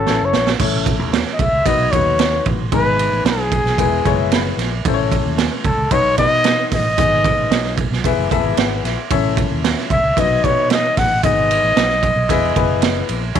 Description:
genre	uptempo 1960s-style soul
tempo	113 BPM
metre	4/4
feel	straight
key	unclear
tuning	A4 = 441 Hz
part	breathy trumpet	melody	0.0-13.1 s	G#4 to F#5	-17 LUFS	equal	none
part	warm baby grand piano	accompaniment	0.0-13.4 s	F#3 to B5	-22 LUFS	left 13 dB	none
part	fingered electric bass	bass	0.0-13.4 s	E1 to B2	-22 LUFS	equal	none
part	raw garage drum kit	drums	0.1-13.4 s	crash cymbal, hi-hat, kick drum, ride cymbal, snare drum	-19 LUFS	right 5 dB	none
room	light reverb, small room ambience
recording	1960s-style stereo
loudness	-14 LUFS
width	side -8 dB against mid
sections	0.6-13.4 A section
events	drum fill 0.1-0.6; grand piano fill 3.8-4.9, 8.0-9.1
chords	0.1 A; 1.7 B; 2.7 G#m; 3.8 E; 4.9 A; 5.9 B; 7.0 G#m; 8.0 E; 9.1 A; 10.2 B; 11.2 G#m; 12.3 E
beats	0.06 | 0.60 1.13 1.66 2.19 | 2.73 3.26 3.79 4.32 | 4.85 5.38 5.92 6.45 | 6.98 7.51 8.04 8.58 | 9.11 9.64 10.17 10.70 | 11.23 11.76 12.29 12.82 | 13.35

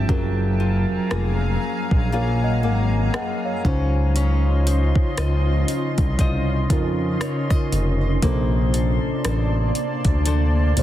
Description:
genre	contemporary R&B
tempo	59 BPM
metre	4/4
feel	swing 58% on 16ths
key	unclear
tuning	A4 = 443 Hz
part	muted felt-like synth keys	accompaniment	0.0-10.8 s	Bb2 to Ab5	-26 LUFS	right 1 dB	chorus
part	granular cloud pad	sustained chords	0.0-10.8 s	Gb3 to C6	-28 LUFS	equal	built-in reverb
part	nylon-string guitar	arpeggios	0.0-10.8 s	Gb3 to Eb5	-30 LUFS	left 7 dB	digital delay
part	smooth gliding synth bass	bass	0.0-10.8 s	F1 to F2	-20 LUFS	equal	none
part	smooth R&B drum kit	drums	0.1-10.8 s	hi-hat, kick drum, rim click	-22 LUFS	equal	soft clipping on snare
room	little or no reverb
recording	dense, heavily limited modern master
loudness	-18 LUFS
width	side -12 dB against mid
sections	0.0-10.8 A section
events	none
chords	0.1 Gbmaj9; 3.6 Dbmaj9; 8.2 Bbmaj9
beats	| 0.09 1.11 2.12 3.14 | 4.16 5.17 6.19 7.21 | 8.22 9.24 10.26

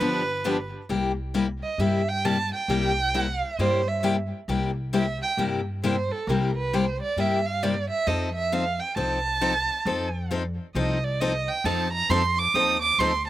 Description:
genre	acoustic string swing (jazz manouche)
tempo	134 BPM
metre	4/4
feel	swing 63% on 8ths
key	unclear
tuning	A4 = 440 Hz
part	warm violin	melody	0.0-0.7 s	B4	-28 LUFS	right 2 dB	slapback echo
part	picked steel-string acoustic guitar	accompaniment	0.0-13.1 s	C3 to A4	-27 LUFS	left 4 dB	none
part	picked steel-string acoustic guitar	accompaniment	0.0-0.6, 11.7-13.1 s	D3 to A4	-33 LUFS	right 6 dB	slapback echo
part	upright bass	bass	0.0-13.3 s	G1 to G2	-30 LUFS	equal	none
part	warm violin	second line	1.6-13.3 s	A4 to Eb6	-25 LUFS	right 4 dB	none
room	little or no reverb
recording	recorded outdoors, with no room sound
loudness	-23 LUFS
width	side -14 dB against mid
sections	0.9-13.3 A section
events	violin solo 0.9-13.3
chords	0.0 G7; 0.9 C7; 8.1 F7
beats	0.00 0.45 | 0.90 1.34 1.79 2.24 | 2.69 3.14 3.59 4.03 | 4.48 4.93 5.38 5.83 | 6.27 6.72 7.17 7.62 | 8.07 8.51 8.96 9.41 | 9.86 10.30 10.75 11.20 | 11.65 12.09 12.54 12.99

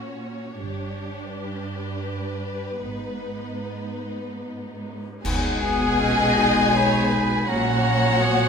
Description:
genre	cinematic, emotional film score for orchestra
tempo	73-85 BPM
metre	3/4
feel	rubato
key	B major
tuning	A4 = 440 Hz
part	warm symphonic violin section	melody	0.0-8.5 s	B4 to G#5	-29 LUFS	left 4 dB	none
part	warm symphonic violin section	second line	0.0-8.5 s	D#4 to G#4	-30 LUFS	left 2 dB	none
part	warm symphonic viola section	accompaniment	0.0-8.5 s	B3 to D#5	-30 LUFS	right 1 dB	none
part	warm symphonic cello section	bass	0.0-8.5 s	G2 to B2	-29 LUFS	right 1 dB	none
part	warm studio double bass section	bass	0.6-8.5 s	G1 to B1	-29 LUFS	right 4 dB	none
part	cymbal swell, clash cymbals and concert bass drum	percussion	2.8-6.7 s	none	-31 LUFS	equal	none
part	clear clarinet	second line	5.2-8.5 s	B3 to D#4	-29 LUFS	left 1 dB	none
part	concert flute	second line	5.3-8.5 s	F#5 to G#5	-30 LUFS	left 3 dB	none
part	warm oboe	second line	5.3-8.5 s	F#5 to B5	-29 LUFS	right 4 dB	none
part	warm French horn section	sustained chords	5.3-8.5 s	F#3 to G#3	-27 LUFS	left 3 dB	none
room	wet recital hall reverb, RT60 1.3 s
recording	none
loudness	-21 LUFS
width	side -6 dB against mid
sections	0.0-5.2 A section; 5.2-8.5 B section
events	band accent 5.2-6.0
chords	0.0 F#/A#; 0.6 G; 2.8 G#m; 5.2 B; 7.5 F#/A#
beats	| 0.60 1.32 2.06 | 2.84 3.65 4.46 | 5.25 6.01 6.75 | 7.48 8.21

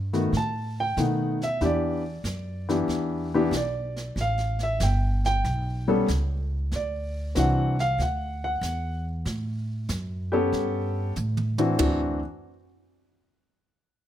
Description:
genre	jazz piano trio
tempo	94 BPM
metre	4/4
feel	swing 69% on 8ths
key	unclear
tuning	A4 = 439 Hz
part	upright bass	bass	0.0-12.2 s	G1 to B2	-28 LUFS	right 1 dB	none
part	warm grand piano	melody	0.1-12.2 s	D#3 to A5	-26 LUFS	left 1 dB	plate reverb
part	jazz brush drum kit	drums	0.1-12.3 s	brushed snare drum, hi-hat, kick drum, ride cymbal, snare drum, toms	-36 LUFS	right 3 dB	none
room	light reverb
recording	close, detailed microphones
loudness	-24 LUFS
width	side -11 dB against mid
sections	0.0-11.8 A section; 11.8-14.1 B section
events	grand piano solo 0.0-11.8; drum fill 11.2-11.8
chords	0.0 B7; 1.6 Em7; 4.2 A9; 6.7 D9; 9.3 A9; 11.8 N.C.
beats	0.33 0.97 | 1.61 2.25 2.89 3.53 | 4.17 4.81 5.44 6.08 | 6.72 7.35 7.99 8.63 | 9.26 9.90 10.53 11.17 | 11.80

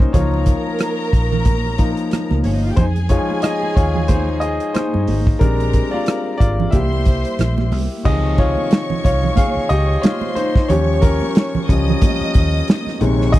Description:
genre	lush 1970s-style soul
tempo	91 BPM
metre	4/4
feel	swing 58% on 16ths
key	unclear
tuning	A4 = 439 Hz
part	clear concert grand piano	accompaniment	0.0-13.4 s	C3 to F5	-20 LUFS	left 2 dB	none
part	vintage muted fingered electric bass	bass	0.0-13.4 s	G1 to G2	-19 LUFS	equal	none
part	warm soul drum kit	drums	0.0-13.4 s	crash cymbal, hi-hat, kick drum, rim click, snare drum	-16 LUFS	equal	none
part	warm studio string section	second line	0.1-13.4 s	Db4 to Eb6	-26 LUFS	right 2 dB	none
part	congas	percussion	0.1-13.4 s	none	-26 LUFS	right 6 dB	none
room	little or no reverb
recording	dry, close 1970s-style studio recording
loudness	-15 LUFS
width	side -15 dB against mid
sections	0.0-8.1 A section; 8.1-13.4 B section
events	grand piano solo 0.0-8.1, 8.1-13.4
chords	0.1 Db69; 2.8 Fm7; 5.4 Bb13; 6.7 C7; 8.1 Dbmaj7; 10.7 Eb7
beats	| 0.13 0.79 1.45 2.11 | 2.77 3.43 4.09 4.75 | 5.42 6.08 6.74 7.40 | 8.06 8.72 9.38 10.04 | 10.70 11.36 12.02 12.68 | 13.34

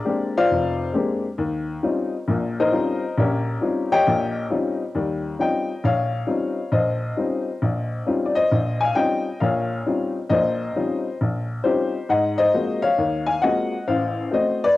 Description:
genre	solo jazz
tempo	135 BPM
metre	4/4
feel	swing 67% on 8ths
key	Eb mixolydian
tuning	A4 = 440 Hz
part	warm upright piano	solo	0.0-14.8 s	F1 to Ab5	-20 LUFS	left 2 dB	none
room	moderate spring reverb, RT60 2.0 s, small room ambience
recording	home recording on cassette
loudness	-20 LUFS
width	side -16 dB against mid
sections	0.0-4.9 A section; 4.9-14.8 B section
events	upright piano solo 0.0-4.9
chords	0.0 Bb13; 1.4 Eb13; 12.1 Ab13; 13.9 Adim7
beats	0.05 0.49 0.94 | 1.38 1.83 2.27 2.72 | 3.17 3.61 4.06 4.50 | 4.95 5.39 5.84 6.28 | 6.73 7.17 7.62 8.07 | 8.51 8.96 9.40 9.85 | 10.30 10.74 11.19 11.63 | 12.08 12.53 12.97 13.42 | 13.87 14.31 14.76

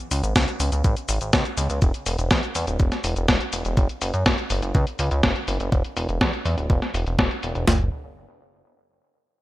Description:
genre	italo disco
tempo	123 BPM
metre	4/4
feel	straight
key	unclear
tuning	A4 = 443 Hz
part	chorused synth bass	bass	0.1-7.9 s	D1 to F#2	-24 LUFS	equal	tube saturation, digital delay
part	clean 12-bit digital drum machine	drums	0.1-7.7 s	cabasa, hi-hat, snare drum	-24 LUFS	left 1 dB	low-pass filter on hats, low-pass filter on perc, low-pass filter on snare, low-pass filter on room
part	clean 12-bit digital drum machine	drums	0.4-7.8 s	kick drum, snare drum, toms	-21 LUFS	equal	none
room	light reverb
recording	bright 1980s-style digital production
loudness	-20 LUFS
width	side -16 dB against mid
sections	0.0-7.7 A section; 7.7-9.4 B section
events	none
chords	none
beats	0.36 0.84 1.33 | 1.82 2.31 2.80 3.28 | 3.77 4.26 4.75 5.24 | 5.72 6.21 6.70 7.19 | 7.67

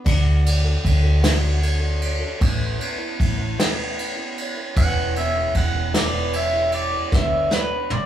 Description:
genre	folk rock and heartland rock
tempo	51 BPM (dotted quarters)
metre	6/8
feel	straight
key	D major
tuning	A4 = 440 Hz
part	picked twelve-string acoustic guitar	accompaniment	0.0-8.1 s	E2 to B4	-31 LUFS	left 2 dB	none
part	hollow-body short-scale fingered electric bass	bass	0.1-8.1 s	E1 to D2	-21 LUFS	equal	none
part	soft brush drum kit	drums	0.1-8.1 s	crash cymbal, kick drum, ride cymbal, snare drum, toms	-22 LUFS	equal	none
part	pedal steel guitar	second line	4.8-8.1 s	B4 to F#5	-23 LUFS	right 1 dB	none
room	moderate small room reverb, RT60 0.5 s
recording	rough rehearsal-room recording, studio ambience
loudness	-18 LUFS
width	side -11 dB against mid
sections	0.0-8.1 A section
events	drum fill 7.1-8.1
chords	0.1 D; 2.4 Aadd9; 4.8 E6; 7.1 G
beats	| 0.05 1.23 | 2.40 3.58 | 4.76 5.94 | 7.12

